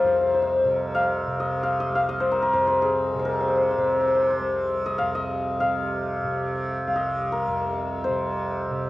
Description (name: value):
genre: indian classical, Hindustani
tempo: free time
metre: none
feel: none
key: C raga malkauns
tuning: A4 = 441 Hz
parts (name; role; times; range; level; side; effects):
- santur; melody; 0.0-8.9 s; Ab4 to Ab5; -22 LUFS; left 2 dB; cassette tape
- tanpura; drone; 0.0-8.9 s; C2 to C3; -29 LUFS; right 2 dB; cassette tape
room: moderate spring reverb, RT60 1.1 s, small room ambience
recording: home recording on cassette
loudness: -22 LUFS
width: side -17 dB against mid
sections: 0.0-8.9 A section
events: none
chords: none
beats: free time